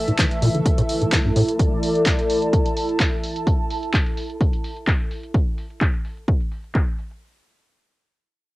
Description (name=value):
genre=acid house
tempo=128 BPM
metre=4/4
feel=swing 53% on 16ths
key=unclear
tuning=A4 = 442 Hz
part: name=warm analog pad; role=sustained chords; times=0.0-3.5 s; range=E3 to E5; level=-26 LUFS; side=equal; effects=chorus, sidechain pumping, cassette tape
part: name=warbly tape-like pad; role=texture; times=0.1-5.3 s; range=E4 to A5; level=-25 LUFS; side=equal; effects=chorus, built-in reverb, sidechain pumping, cassette tape
part: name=deep acid bass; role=riff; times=0.1-1.4 s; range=G2 to E3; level=-21 LUFS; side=equal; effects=ensemble chorus, sidechain pumping, cassette tape, analog delay
part: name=punchy analog drum machine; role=drums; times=0.1-7.2 s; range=handclaps, hi-hat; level=-26 LUFS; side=equal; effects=low-pass filter on hats, low-pass filter on perc, low-pass filter on toms, low-pass filter on snare
part: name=electronic kick drum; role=drums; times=0.2-6.8 s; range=none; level=-21 LUFS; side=equal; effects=none
room=moderate booth ambience, RT60 0.2 s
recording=home recording on cassette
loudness=-19 LUFS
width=side -19 dB against mid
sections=0.0-7.2 A section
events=filter sweep on drum 0.0-7.2; filter sweep on analog synth pad 0.0-3.5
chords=0.0 A5